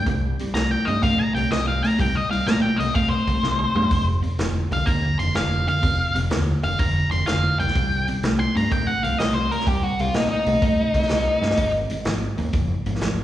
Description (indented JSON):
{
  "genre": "blues rock power trio and southern rock",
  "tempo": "125 BPM",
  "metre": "4/4",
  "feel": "swing 68% on 8ths",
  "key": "C minor",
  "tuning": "A4 = 440 Hz",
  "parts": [
    { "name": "octave-fuzz lead guitar", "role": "melody", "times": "0.0-11.7 s", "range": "Eb4 to C6", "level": "-24 LUFS", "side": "left 1 dB", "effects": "distortion, slapback echo" },
    { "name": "crunchy overdriven guitar", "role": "riff", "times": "0.0-13.2 s", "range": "F2 to A3", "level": "-25 LUFS", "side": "equal", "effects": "slapback echo" },
    { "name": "growling fingered electric bass", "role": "bass", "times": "0.1-13.2 s", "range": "F1 to Bb2", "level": "-25 LUFS", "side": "equal", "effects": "overdrive" },
    { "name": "vintage drum kit", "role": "drums", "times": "0.1-13.2 s", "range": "hi-hat, kick drum, snare drum, toms", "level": "-26 LUFS", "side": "equal", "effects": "none" }
  ],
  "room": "light reverb",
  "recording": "live gig heard through the venue's PA, recital hall reverb, small room ambience",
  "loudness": "-19 LUFS",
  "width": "side -13 dB against mid",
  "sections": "0.0-13.2 A section",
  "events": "drum fill 3.4-3.9, 11.3",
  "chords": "0.0 C5; 3.9 F5; 7.8 Cm; 11.6 Ab5"
}